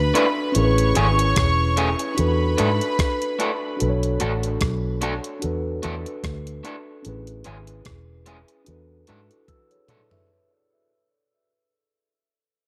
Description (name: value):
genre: lovers rock reggae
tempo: 74 BPM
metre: 4/4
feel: swing 56% on 16ths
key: unclear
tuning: A4 = 440 Hz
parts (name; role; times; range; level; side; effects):
- warm studio string section; second line; 0.0-3.8 s; B4 to C#6; -28 LUFS; equal; tape echo
- mellow tine electric piano; accompaniment; 0.0-10.5 s; C#4 to E6; -28 LUFS; equal; tape echo
- vintage muted fingered electric bass; bass; 0.0-9.3 s; E1 to G#2; -26 LUFS; equal; none
- electric guitar through a small old amp; stabs; 0.1-10.0 s; E3 to B4; -28 LUFS; equal; spring reverb
- gated 80s digital drum machine; drums; 0.2-10.3 s; hi-hat, kick drum, rim click, toms; -28 LUFS; equal; gated reverb
room: light reverb, digital ambience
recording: none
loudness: -22 LUFS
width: mono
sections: 0.0-10.3 A section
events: fade-out 0.0-10.3; tine electric piano fill 9.1-10.3; drum fill 9.5-10.3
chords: 0.0 E7sus4; 0.6 Amaj7; 2.2 E7sus4; 3.8 Bm7; 5.4 E7sus4; 7.0 Amaj7; 8.7 E7sus4